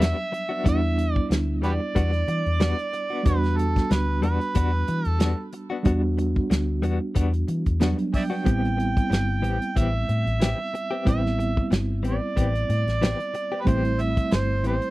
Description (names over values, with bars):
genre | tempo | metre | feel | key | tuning
straight-eighth soul blues | 92 BPM | 4/4 | swing 55% on 16ths | E minor | A4 = 440 Hz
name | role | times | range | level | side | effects
overdriven harmonica | melody | 0.0-14.9 s | G4 to G5 | -29 LUFS | right 3 dB | none
mellow reed electric piano | accompaniment | 0.0-14.9 s | F#3 to F#4 | -28 LUFS | right 2 dB | medium tremolo
direct-recorded clean electric guitar | stabs | 0.0-14.9 s | E3 to G4 | -29 LUFS | left 4 dB | tremolo
vintage muted fingered electric bass | bass | 0.0-14.8 s | G1 to E3 | -24 LUFS | equal | none
warm soul drum kit | drums | 0.0-14.9 s | hi-hat, kick drum, snare drum | -23 LUFS | equal | none
room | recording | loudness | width
little or no reverb | dry, close 1970s-style studio recording | -21 LUFS | side -18 dB against mid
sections
0.0-14.9 A section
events
none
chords
0.0 Em9; 8.5 Am9